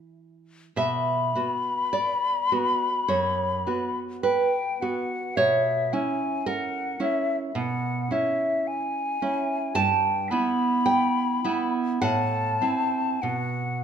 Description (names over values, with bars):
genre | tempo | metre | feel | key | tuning
romantic duo for flute and classical guitar | 45-56 BPM | 4/4 | rubato | B minor, E minor from 9.8 s | A4 = 439 Hz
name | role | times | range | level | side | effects
nylon-string guitar | accompaniment | 0.0-13.8 s | F#2 to A5 | -25 LUFS | right 4 dB | none
hollow concert flute | melody | 0.8-13.8 s | E5 to B5 | -26 LUFS | left 4 dB | none
room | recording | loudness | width
moderate recital hall reverb, RT60 1.5 s | minimal, uncompressed stereo recording | -23 LUFS | side -8 dB against mid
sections
0.8-13.8 A section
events
none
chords
0.0 Em; 0.8 Bm; 5.4 A#dim/B; 9.8 Em/G; 12.0 Am; 13.2 B5